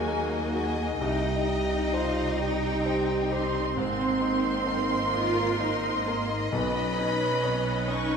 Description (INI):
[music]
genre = cinematic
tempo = 44 BPM (dotted quarters)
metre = 6/8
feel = rubato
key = Ab major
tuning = A4 = 440 Hz
[part]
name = rich studio violin section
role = melody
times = 0.0-8.2 s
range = Eb5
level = -36 LUFS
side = left 4 dB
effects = none
[part]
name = dark clarinet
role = second line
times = 0.0-8.2 s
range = F4 to C#5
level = -33 LUFS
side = right 1 dB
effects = none
[part]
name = hollow flute section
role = second line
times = 0.0-8.2 s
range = F5 to C#6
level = -35 LUFS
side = right 2 dB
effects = none
[part]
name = warm studio violin section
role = second line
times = 0.0-8.2 s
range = F5 to C#6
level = -35 LUFS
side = left 4 dB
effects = none
[part]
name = clear baby grand piano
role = accompaniment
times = 0.0-8.2 s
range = B1 to Eb5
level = -34 LUFS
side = left 2 dB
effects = none
[part]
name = warm studio viola section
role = accompaniment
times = 0.0-8.2 s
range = Bb3 to B4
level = -35 LUFS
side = right 3 dB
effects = none
[part]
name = mellow French horn section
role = sustained chords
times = 0.0-8.2 s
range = F#3 to Eb4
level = -35 LUFS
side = left 5 dB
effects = none
[part]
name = rich studio double bass section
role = bass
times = 0.0-8.2 s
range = Ab1 to Eb2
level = -32 LUFS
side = right 3 dB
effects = none
[part]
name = warm studio cello section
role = bass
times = 0.0-8.2 s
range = Bb3 to F4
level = -32 LUFS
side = right 3 dB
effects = none
[sound]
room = wet scoring stage reverb, RT60 1.6 s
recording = minimal, uncompressed stereo recording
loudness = -24 LUFS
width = side -6 dB against mid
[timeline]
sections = 0.0-8.2 A section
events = none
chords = 0.0 Ebm; 1.0 Cm; 3.8 Abadd9; 6.5 Badd9